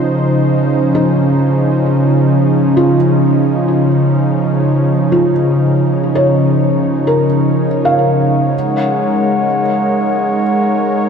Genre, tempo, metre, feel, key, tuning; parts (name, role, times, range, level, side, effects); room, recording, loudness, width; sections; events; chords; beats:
ambient; 66 BPM; 3/4; straight; A4 = 438 Hz
warm analog pad; sustained chords; 0.0-11.1 s; Db3 to Db5; -12 LUFS; equal; chorus
felt-muted upright piano; arpeggios; 0.0-11.1 s; F3 to F5; -19 LUFS; equal; ping-pong delay
glass harmonica; texture; 8.5-11.1 s; Gb5; -17 LUFS; equal
wet cathedral reverb, RT60 6.5 s; in a vast, echoing space, cassette tape; -11 LUFS; side -6 dB against mid
0.0-11.1 A section
fade-out on felt piano 0.0-11.1
0.0 Dbmaj7; 8.5 Ab7sus4
| 0.36 1.26 2.17 | 3.08 3.99 4.90 | 5.81 6.72 7.63 | 8.54 9.45 10.36